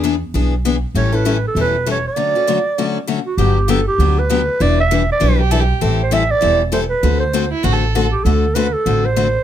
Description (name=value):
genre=acoustic string swing (jazz manouche)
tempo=197 BPM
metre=4/4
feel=swing 58% on 8ths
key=D major, G major from 3.4 s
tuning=A4 = 438 Hz
part: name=picked steel-string acoustic guitar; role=accompaniment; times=0.0-9.3 s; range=D3 to B4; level=-19 LUFS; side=left 7 dB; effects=none
part: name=upright bass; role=bass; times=0.0-9.3 s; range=E1 to E2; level=-17 LUFS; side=right 1 dB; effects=none
part: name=growling clarinet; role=melody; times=1.0-9.4 s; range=F#4 to E5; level=-18 LUFS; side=right 3 dB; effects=plate reverb
part: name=warm violin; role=second line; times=5.4-8.0 s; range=E4 to A4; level=-22 LUFS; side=right 7 dB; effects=none
room=light reverb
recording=close, detailed microphones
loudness=-14 LUFS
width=side -10 dB against mid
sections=0.0-3.4 A section; 3.4-9.4 B section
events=none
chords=0.0 E7; 0.9 A7; 2.2 Dmaj7; 3.4 Gmaj7; 4.6 Em7; 5.8 Am7; 7.0 D7